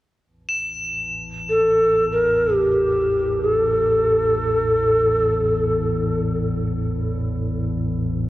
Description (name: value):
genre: world meditative, free-time meditation music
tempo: free time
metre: none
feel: none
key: unclear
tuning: A4 = 444 Hz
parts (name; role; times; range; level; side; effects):
- metallic inharmonic drone; drone; 1.0-8.3 s; A1 to E2; -25 LUFS; equal; chorus, built-in reverb
- crotales; texture; 0.5-8.2 s; E7; -26 LUFS; left 1 dB; none
- mellow hollow Native American-style cedar flute; melody; 1.5-6.2 s; G4 to Bb4; -18 LUFS; equal; tape echo
room: wet huge ambient reverb, RT60 4.6 s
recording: worn, warbling old tape, cassette tape, warbly pitch drift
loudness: -18 LUFS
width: side -16 dB against mid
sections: 0.2-8.3 A section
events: none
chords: none